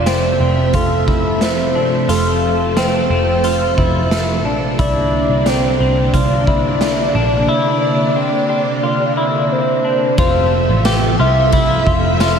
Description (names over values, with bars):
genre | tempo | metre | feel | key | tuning
dream pop | 89 BPM | 4/4 | straight | F major | A4 = 436 Hz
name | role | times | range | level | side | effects
soft octave-layered synth lead | melody | 0.0-12.4 s | A4 to E5 | -18 LUFS | equal | chorus, ping-pong delay
string machine, violins | sustained chords | 0.0-12.4 s | C3 to E5 | -19 LUFS | right 1 dB | ensemble chorus
semi-hollow electric guitar | arpeggios | 0.0-12.4 s | C4 to G4 | -20 LUFS | left 3 dB | analog chorus, ping-pong delay
vintage muted picked electric bass | bass | 0.0-12.4 s | F1 to C2 | -19 LUFS | equal | none
raw garage drum kit | drums | 0.1-12.4 s | hi-hat, kick drum, ride cymbal, snare drum, tambourine | -20 LUFS | right 1 dB | none
room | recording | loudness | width
moderate plate reverb, RT60 3.3 s | dreamy mix soaked in reverb | -13 LUFS | side -7 dB against mid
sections
0.0-10.2 A section; 10.2-12.4 B section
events
none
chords
0.0 Fmaj7; 4.8 C9; 10.2 Fmaj7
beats
0.07 0.74 1.42 | 2.09 2.77 3.44 4.12 | 4.79 5.46 6.14 6.81 | 7.49 8.16 8.83 9.51 | 10.18 10.86 11.53 12.21